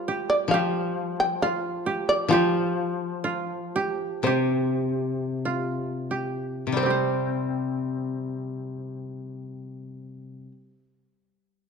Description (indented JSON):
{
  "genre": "japanese traditional",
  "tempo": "41-68 BPM",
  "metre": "2/4",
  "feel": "rubato",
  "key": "unclear",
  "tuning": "A4 = 440 Hz",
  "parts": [
    { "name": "shamisen", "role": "melody", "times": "0.0-10.5 s", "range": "F4 to G5", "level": "-25 LUFS", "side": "right 1 dB", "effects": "none" },
    { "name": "koto", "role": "second line", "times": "0.0-10.6 s", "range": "C4 to C5", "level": "-29 LUFS", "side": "right 6 dB", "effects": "none" },
    { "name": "koto", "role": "accompaniment", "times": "0.0-10.6 s", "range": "C3 to C4", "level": "-28 LUFS", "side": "left 4 dB", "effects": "none" }
  ],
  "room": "wet recital hall reverb, RT60 1.4 s",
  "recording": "dark, warm production",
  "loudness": "-24 LUFS",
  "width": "side -6 dB against mid",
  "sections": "0.0-6.8 A section; 6.8-11.7 B section",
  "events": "slowing down 2.3-6.8",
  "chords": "none"
}